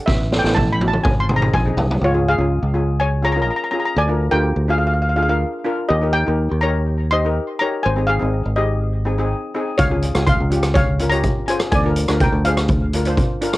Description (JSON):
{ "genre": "calypso", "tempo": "124 BPM", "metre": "4/4", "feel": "straight", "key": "unclear", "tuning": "A4 = 440 Hz", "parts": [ { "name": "steel pan", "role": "melody", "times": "0.0-13.4 s", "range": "F4 to C6", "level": "-21 LUFS", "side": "left 1 dB", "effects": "cassette tape" }, { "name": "steel pan", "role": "accompaniment", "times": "0.0-13.6 s", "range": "C4 to C5", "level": "-24 LUFS", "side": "left 1 dB", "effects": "cassette tape" }, { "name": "fingered electric bass", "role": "bass", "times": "0.1-13.2 s", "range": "Ab1 to Eb2", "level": "-19 LUFS", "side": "equal", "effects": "none" }, { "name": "street-band drum kit", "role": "drums", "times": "0.1-2.0, 9.8-13.6 s", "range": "hi-hat, kick drum, rim click, snare drum, toms", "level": "-20 LUFS", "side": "equal", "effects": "cassette tape" } ], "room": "light reverb", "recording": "home recording on cassette", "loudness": "-16 LUFS", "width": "side -18 dB against mid", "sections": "0.0-2.0 A section; 2.0-13.6 B section", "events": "steel pan solo 0.0-2.0; drum fill 0.1-2.0", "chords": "0.1 A; 1.1 Ab; 2.0 Db; 4.0 Bb7/D; 5.9 Eb; 7.8 Ab; 9.8 Db; 11.7 Bb7/D" }